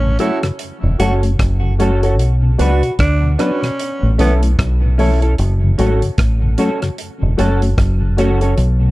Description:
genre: roots reggae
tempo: 75 BPM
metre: 4/4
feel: swing 59% on 16ths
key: F# minor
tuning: A4 = 440 Hz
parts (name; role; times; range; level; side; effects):
- raspy tenor saxophone; second line; 0.0-4.3 s; B3 to F#4; -23 LUFS; right 2 dB; tape echo
- mellow tonewheel organ; accompaniment; 0.0-8.9 s; F#2 to D4; -22 LUFS; left 1 dB; slow rotary speaker, tape echo
- deep dub fingered electric bass; bass; 0.0-8.9 s; E1 to D2; -14 LUFS; equal; none
- clean electric guitar; accompaniment; 0.2-8.5 s; C#4 to B4; -24 LUFS; right 3 dB; analog chorus, tape echo
- dark upright piano; stabs; 0.2-8.6 s; E4 to D5; -22 LUFS; left 3 dB; none
- damped 70s drum kit; drums; 0.2-8.8 s; hi-hat, kick drum, rim click; -20 LUFS; equal; none
room: small room reverb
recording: dark, warm production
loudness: -13 LUFS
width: side -19 dB against mid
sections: 0.0-8.9 A section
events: none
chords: 0.0 F#m; 2.2 Bm; 3.8 A; 5.4 F#m

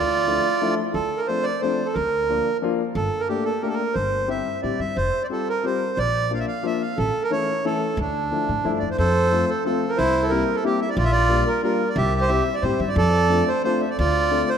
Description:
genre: musette waltz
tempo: 180 BPM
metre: 3/4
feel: straight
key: D minor, F major from 9.0 s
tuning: A4 = 438 Hz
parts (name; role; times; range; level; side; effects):
- accordion; melody; 0.0-14.6 s; D4 to F5; -22 LUFS; right 2 dB; tape echo
- upright bass; bass; 0.0-14.4 s; F1 to A2; -25 LUFS; equal; none
- warm upright piano; accompaniment; 0.3-14.5 s; E3 to G4; -26 LUFS; left 5 dB; none
room: moderate concert hall reverb, RT60 2.2 s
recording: none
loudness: -20 LUFS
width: side -8 dB against mid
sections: 0.9-9.0 A section; 9.0-14.6 B section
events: none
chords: 0.0 Dmadd9; 0.9 Dm7; 2.0 Bb/D; 3.0 Gmadd9; 4.0 C/G; 5.0 Fsus2; 6.0 Bb; 7.0 A; 8.0 Dmadd9; 9.0 F; 10.0 C7; 11.0 Gm7/Bb; 12.0 C; 13.0 F6; 14.0 Dm7

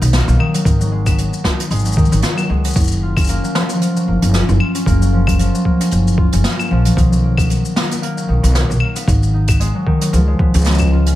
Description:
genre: folktronica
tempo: 114 BPM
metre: 4/4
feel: swing 56% on 16ths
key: F# major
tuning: A4 = 440 Hz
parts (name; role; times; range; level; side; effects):
- concert harp; arpeggios; 0.0-11.2 s; D#3 to E#4; -18 LUFS; left 1 dB; tape echo
- upright bass; bass; 0.0-11.1 s; F#1 to C#2; -15 LUFS; equal; none
- jazz brush drum kit; drums; 0.0-11.2 s; claves, hi-hat, shaker, snare drum; -22 LUFS; equal; none
- electronic kick drum; drums; 0.7-10.9 s; none; -16 LUFS; equal; none
room: light reverb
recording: vinyl crackle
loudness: -13 LUFS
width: side -14 dB against mid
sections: 0.0-11.2 A section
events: none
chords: 0.0 Bmaj7; 0.7 G#m7; 2.8 F#maj7; 7.0 Bmaj7; 9.1 G#m7; 10.1 C#7

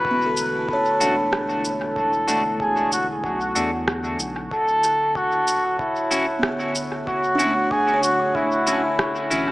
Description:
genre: ambient dub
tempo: 94 BPM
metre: 4/4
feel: swing 55% on 16ths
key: unclear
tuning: A4 = 440 Hz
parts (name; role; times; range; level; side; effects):
- trumpet with cup mute; melody; 0.0-9.3 s; E4 to B4; -21 LUFS; equal; dub echo
- warbly tape-like pad; sustained chords; 0.0-9.5 s; D3 to E5; -32 LUFS; equal; chorus, built-in reverb
- buzzing kalimba; arpeggios; 0.0-9.5 s; A3 to C#6; -28 LUFS; right 1 dB; dub echo
- soft dub sub bass; bass; 0.0-9.5 s; D1 to E2; -36 LUFS; equal; none
- electronic kick drum; drums; 0.0-9.1 s; none; -37 LUFS; equal; overdrive
- electronic shaker and rim click; drums; 0.4-9.4 s; none; -28 LUFS; equal; dub echo
- clean electric guitar; stabs; 1.0-9.5 s; A3 to F#4; -28 LUFS; equal; wide subtle chorus, dub echo
room: wet spring reverb, RT60 1.8 s, digital ambience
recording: small speaker sound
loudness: -19 LUFS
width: side -19 dB against mid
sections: 0.0-9.5 A section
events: none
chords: 0.0 E9sus4; 4.5 Dmaj9

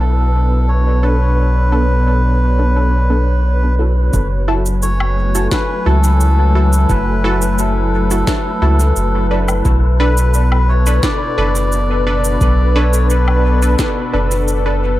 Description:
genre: ambient dub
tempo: 87 BPM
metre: 4/4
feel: straight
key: F# minor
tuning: A4 = 440 Hz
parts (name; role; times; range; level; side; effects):
- melodica; melody; 0.0-13.8 s; A4 to D5; -22 LUFS; equal; dub echo
- warm analog pad; sustained chords; 0.0-15.0 s; B2 to G#5; -21 LUFS; left 1 dB; chorus, tremolo
- soft dub sub bass; bass; 0.0-15.0 s; F#1 to C#2; -14 LUFS; equal; none
- wind-like tuned noise texture; texture; 0.0-15.0 s; B4; -27 LUFS; left 5 dB; built-in reverb
- filtered dub chord stab; stabs; 1.0-14.8 s; B3 to B4; -23 LUFS; right 1 dB; chorus, dub echo
- electronic kick drum; drums; 4.1-13.9 s; none; -19 LUFS; equal; overdrive
- electronic shaker, woodblock and snare drum; drums; 4.1-14.6 s; none; -25 LUFS; equal; dub echo
room: light reverb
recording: none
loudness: -12 LUFS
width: side -15 dB against mid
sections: 0.0-4.1 A section; 4.1-15.0 B section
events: none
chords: 0.0 Bm7; 4.1 F#m7; 9.7 Bm7

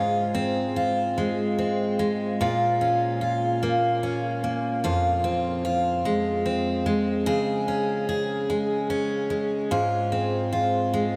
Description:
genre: pop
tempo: 49 BPM (dotted quarters)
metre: 6/8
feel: straight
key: Ab major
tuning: A4 = 441 Hz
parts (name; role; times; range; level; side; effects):
- picked steel-string acoustic guitar; solo; 0.0-11.2 s; F2 to Ab4; -25 LUFS; equal; diffuse ambient delay
room: wet huge ambient reverb, RT60 8.6 s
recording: dreamy mix soaked in reverb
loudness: -25 LUFS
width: mono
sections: 0.0-11.2 A section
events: none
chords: 0.0 Ab6; 2.4 Bbm; 4.8 Fm; 7.3 Db5; 9.7 Ab6

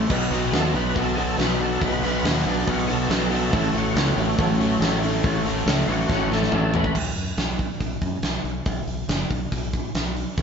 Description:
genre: classic rock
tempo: 140 BPM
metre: 4/4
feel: straight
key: B mixolydian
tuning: A4 = 439 Hz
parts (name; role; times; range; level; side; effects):
- mellow tonewheel organ; sustained chords; 0.0-6.9 s; A3 to B4; -35 LUFS; equal; none
- crunchy overdriven guitar; riff; 0.0-6.9 s; A2 to B3; -24 LUFS; left 1 dB; none
- growling fingered electric bass; bass; 0.0-10.4 s; F#1 to F#2; -27 LUFS; equal; overdrive
- clear grand piano; accompaniment; 0.1-6.9 s; C#4 to F#5; -34 LUFS; right 1 dB; none
- big rock drum kit; drums; 0.1-10.4 s; crash cymbal, hi-hat, kick drum, snare drum, toms; -25 LUFS; right 1 dB; none
- overdriven tonewheel organ; melody; 0.5-7.0 s; F#3 to B4; -29 LUFS; equal; slow rotary speaker, chorus vibrato, slapback echo
room: moderate stone room reverb, RT60 1.0 s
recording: band playing live in one room, nothing above 7.8 kHz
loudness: -20 LUFS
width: side -6 dB against mid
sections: 0.0-7.0 A section; 7.0-10.4 B section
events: tonewheel organ solo 0.0-7.0; drum fill 6.1-7.0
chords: 0.1 B; 3.5 A; 7.0 B5

